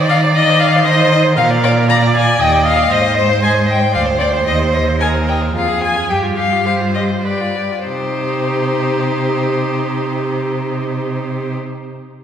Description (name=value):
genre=quick classical-period movement for string quartet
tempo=97-119 BPM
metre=3/4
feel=rubato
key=C minor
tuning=A4 = 442 Hz
part: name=warm violin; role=second line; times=0.0-11.6 s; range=F4 to F5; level=-22 LUFS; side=equal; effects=none
part: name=clear viola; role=accompaniment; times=0.0-11.6 s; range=Eb4 to Eb5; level=-20 LUFS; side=right 2 dB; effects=none
part: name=rich cello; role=bass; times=0.0-11.6 s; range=D2 to Eb3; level=-17 LUFS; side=right 2 dB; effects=none
part: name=warm violin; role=melody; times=0.1-11.5 s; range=C5 to Bb5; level=-18 LUFS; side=left 4 dB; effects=none
room=wet concert hall reverb, RT60 2.2 s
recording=heard from further back in the room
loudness=-13 LUFS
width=side -9 dB against mid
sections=0.0-7.9 A section; 7.9-11.4 B section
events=slowing down 3.7-7.9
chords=0.0 Cm/Eb; 1.4 Bb; 2.4 Ebmaj7; 2.9 Ab; 3.9 D7(no3); 4.5 Cm/Eb; 5.6 Fm; 6.1 G7sus4; 7.9 Cm